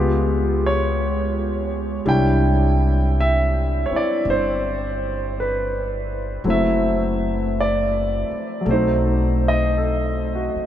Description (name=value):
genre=jazz ballad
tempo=55 BPM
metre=4/4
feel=swing 69% on 8ths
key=C major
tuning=A4 = 441 Hz
part: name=warm concert grand piano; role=accompaniment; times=0.0-10.7 s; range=F#3 to G5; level=-20 LUFS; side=left 1 dB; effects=none
part: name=upright bass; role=bass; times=0.0-10.6 s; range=F#1 to Db2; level=-22 LUFS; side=equal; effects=none
room=wet huge ambient reverb, RT60 8.8 s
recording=in a vast, echoing space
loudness=-18 LUFS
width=side -11 dB against mid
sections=0.0-10.7 A section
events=none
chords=0.0 Db7#11; 2.1 Cmaj9; 6.4 F#m7b5; 8.6 B7b9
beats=0.96 | 2.05 3.15 4.25 5.34 | 6.43 7.53 8.64 9.77